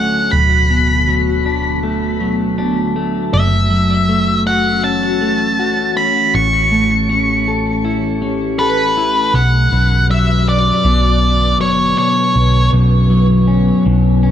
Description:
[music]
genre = post-rock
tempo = 80 BPM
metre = 4/4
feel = straight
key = B minor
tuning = A4 = 439 Hz
[part]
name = octave-fuzz lead guitar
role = melody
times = 0.0-12.7 s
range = B4 to C#6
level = -16 LUFS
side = equal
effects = distortion, tape echo
[part]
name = ethereal airy pad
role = sustained chords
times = 0.0-14.3 s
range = D3 to B4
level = -23 LUFS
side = left 1 dB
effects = ensemble chorus, built-in reverb, phaser
[part]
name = clean electric guitar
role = arpeggios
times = 0.0-14.3 s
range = B1 to A4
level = -17 LUFS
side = left 2 dB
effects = spring reverb, tape echo
[part]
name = hollow-body short-scale picked electric bass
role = bass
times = 0.0-14.3 s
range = D1 to B1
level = -16 LUFS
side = equal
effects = none
[sound]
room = light reverb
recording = none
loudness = -12 LUFS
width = side -10 dB against mid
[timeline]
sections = 0.0-9.3 A section; 9.3-14.3 B section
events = none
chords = 0.3 Bm7/D; 3.3 F#m7; 6.3 A7; 9.3 Bmadd9

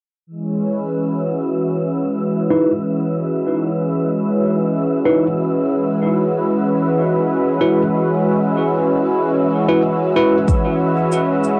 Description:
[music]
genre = ambient dub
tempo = 94 BPM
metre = 4/4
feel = straight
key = C# minor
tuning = A4 = 440 Hz
[part]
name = warm analog pad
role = sustained chords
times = 0.3-11.6 s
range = E3 to B4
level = -19 LUFS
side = equal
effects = chorus, cassette tape
[part]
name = wind-like tuned noise texture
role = texture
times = 0.6-11.6 s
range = E4 to E5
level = -30 LUFS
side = equal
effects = built-in reverb, cassette tape
[part]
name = bell-like tine electric piano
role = stabs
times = 2.5-10.4 s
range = D#4 to B4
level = -20 LUFS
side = equal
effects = low-pass filter, cassette tape, dub echo
[part]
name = cabasa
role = drums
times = 10.5-11.6 s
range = none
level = -38 LUFS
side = equal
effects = low-pass filter on perc, cassette tape, low-pass filter on room
[part]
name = electronic kick drum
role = drums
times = 10.5-10.6 s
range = none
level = -18 LUFS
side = equal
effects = cassette tape
[sound]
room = light reverb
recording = home recording on cassette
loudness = -18 LUFS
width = mono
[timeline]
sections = 0.3-11.6 A section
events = filter sweep on tine electric piano 0.3-11.6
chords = 0.3 C#m7; 5.4 F#7sus4

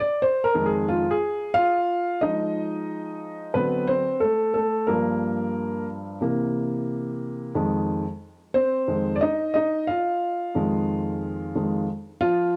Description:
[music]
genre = hip hop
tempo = 90 BPM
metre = 4/4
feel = swing 65% on 16ths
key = F dorian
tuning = A4 = 440 Hz
[part]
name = warm upright piano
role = solo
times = 0.0-12.6 s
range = F2 to F5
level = -25 LUFS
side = equal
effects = none
[sound]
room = light reverb, studio reverb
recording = none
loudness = -25 LUFS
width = mono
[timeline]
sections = 0.0-2.2 A section; 2.2-12.6 B section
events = upright piano solo 0.0-2.2, 2.2-12.6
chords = 0.0 Fm7; 3.6 D7; 4.9 Gm7; 6.2 C7; 7.6 Fm7

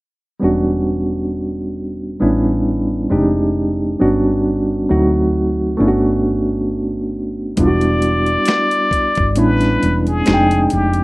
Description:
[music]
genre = R&B, neo-soul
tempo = 67 BPM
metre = 4/4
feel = swing 56% on 16ths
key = E dorian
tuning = A4 = 445 Hz
[part]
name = reed electric piano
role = accompaniment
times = 0.4-11.0 s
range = F#3 to G5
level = -16 LUFS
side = right 1 dB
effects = overdrive, fast tremolo
[part]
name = woody fretless electric bass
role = bass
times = 0.4-11.0 s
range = E1 to D2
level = -20 LUFS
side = equal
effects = none
[part]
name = trumpet with plunger mute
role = melody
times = 7.6-11.0 s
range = G4 to D5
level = -18 LUFS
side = left 2 dB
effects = none
[part]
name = boom bap sampler-style drum kit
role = drums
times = 7.6-11.0 s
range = finger snaps, hi-hat, kick drum, snare drum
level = -22 LUFS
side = equal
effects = none
[sound]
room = little or no reverb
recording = rough home demo mix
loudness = -14 LUFS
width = side -20 dB against mid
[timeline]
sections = 0.4-7.6 A section; 7.6-11.0 B section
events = none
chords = 0.4 Em7; 2.2 A9sus4; 3.1 Fm7; 4.0 Gmaj7#11; 4.9 D7b9; 5.8 Gmaj9; 7.6 Em7; 9.4 A9sus4; 10.3 Fm7

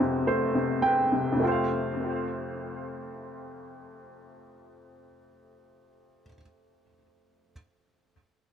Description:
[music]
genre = pop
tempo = 34 BPM (dotted quarters)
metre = 6/8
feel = straight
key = F major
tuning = A4 = 440 Hz
[part]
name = bright upright piano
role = accompaniment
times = 0.0-7.5 s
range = F2 to G5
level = -26 LUFS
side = equal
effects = analog delay
[sound]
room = moderate plate reverb, RT60 2.9 s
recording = echo-heavy mix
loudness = -25 LUFS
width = side -8 dB against mid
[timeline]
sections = 0.0-1.4 A section; 1.4-5.0 B section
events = upright piano fill 0.0-1.4; slowing down 0.0-1.4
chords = 0.0 F

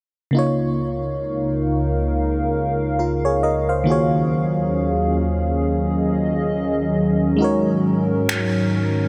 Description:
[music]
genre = contemporary R&B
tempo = 68 BPM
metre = 4/4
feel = swing 58% on 16ths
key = Db major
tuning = A4 = 440 Hz
[part]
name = FM electric piano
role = accompaniment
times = 0.3-9.1 s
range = Db3 to F5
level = -24 LUFS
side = equal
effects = none
[part]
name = hollow soft pad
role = sustained chords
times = 0.8-9.1 s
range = Db2 to F5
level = -22 LUFS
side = equal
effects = chorus
[part]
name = electronic finger snaps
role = drums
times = 8.3-8.5 s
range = none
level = -28 LUFS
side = equal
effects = none
[sound]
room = wet huge ambient reverb, RT60 8.0 s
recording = dreamy mix soaked in reverb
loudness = -20 LUFS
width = mono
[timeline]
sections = 0.3-9.1 A section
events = none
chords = 0.3 Db69; 3.9 Ebm11; 7.4 Ab7sus4

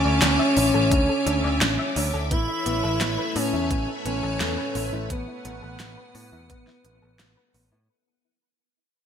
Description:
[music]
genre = synthwave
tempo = 86 BPM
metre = 4/4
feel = straight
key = unclear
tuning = A4 = 440 Hz
[part]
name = expressive portamento lead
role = melody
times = 0.0-7.8 s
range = B3 to E4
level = -26 LUFS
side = equal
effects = chorus, ping-pong delay
[part]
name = airy dreamy lead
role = second line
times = 0.0-7.8 s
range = B3 to E4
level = -30 LUFS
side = left 1 dB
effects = chorus
[part]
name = string machine, full ensemble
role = sustained chords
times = 0.0-7.9 s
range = A3 to D6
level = -31 LUFS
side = equal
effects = phaser, ensemble chorus, sidechain pumping
[part]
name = soft round pluck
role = arpeggios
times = 0.0-7.9 s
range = B3 to E5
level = -33 LUFS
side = left 3 dB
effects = chorus, ping-pong delay
[part]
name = picked electric bass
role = bass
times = 0.0-7.9 s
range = A1 to A2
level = -27 LUFS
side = equal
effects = sidechain pumping
[part]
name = pop drum kit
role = drums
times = 0.2-7.7 s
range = hi-hat, snare drum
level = -26 LUFS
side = right 1 dB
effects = gated reverb
[part]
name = electronic kick drum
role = drums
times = 0.9-6.6 s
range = none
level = -25 LUFS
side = equal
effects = none
[sound]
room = moderate plate reverb, RT60 2.1 s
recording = bright 1980s-style digital production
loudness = -21 LUFS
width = side -8 dB against mid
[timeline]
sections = 0.0-7.9 A section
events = fade-out 0.5-7.9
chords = 0.0 Dsus2; 2.3 Aadd9

